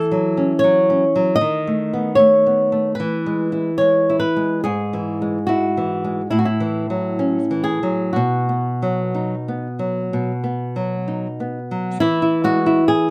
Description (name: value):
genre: romantic duo for nylon-string guitar and classical guitar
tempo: 60-78 BPM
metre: 4/4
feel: rubato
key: E major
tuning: A4 = 438 Hz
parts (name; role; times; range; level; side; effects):
- flamenco guitar; melody; 0.0-13.1 s; E4 to D#5; -21 LUFS; equal; none
- nylon-string guitar; accompaniment; 0.0-13.1 s; G#2 to E4; -22 LUFS; equal; none
room: light reverb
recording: close, detailed microphones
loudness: -19 LUFS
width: mono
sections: 0.0-12.0 A section; 12.0-13.1 B section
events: none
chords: 0.0 F#m7/E; 1.4 B7/D#; 3.0 E; 4.6 E/G#; 6.3 F#m7/A; 8.1 B; 12.0 E